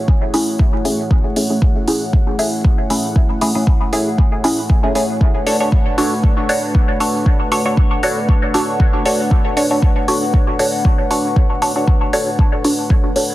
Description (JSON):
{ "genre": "dub techno", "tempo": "117 BPM", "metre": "4/4", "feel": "swing 54% on 16ths", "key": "unclear", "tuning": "A4 = 440 Hz", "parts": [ { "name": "dark analog pad", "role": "sustained chords", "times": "0.0-13.3 s", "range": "A3 to F#5", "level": "-22 LUFS", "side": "left 1 dB", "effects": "chorus, sidechain pumping" }, { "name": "electronic kick drum", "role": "drums", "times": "0.1-13.0 s", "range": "none", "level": "-14 LUFS", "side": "equal", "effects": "none" }, { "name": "filtered dub chord stab", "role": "stabs", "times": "0.3-13.3 s", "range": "A3 to C#5", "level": "-18 LUFS", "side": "equal", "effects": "chorus, phaser, sidechain pumping, dub echo" }, { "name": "electronic hi-hat", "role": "drums", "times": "0.3-13.3 s", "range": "none", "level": "-24 LUFS", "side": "equal", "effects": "none" } ], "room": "light reverb", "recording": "dense, heavily limited modern master, vinyl crackle", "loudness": "-13 LUFS", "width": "side -16 dB against mid", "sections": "0.0-13.3 A section", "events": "none", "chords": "0.0 F#m7; 5.2 Bm7" }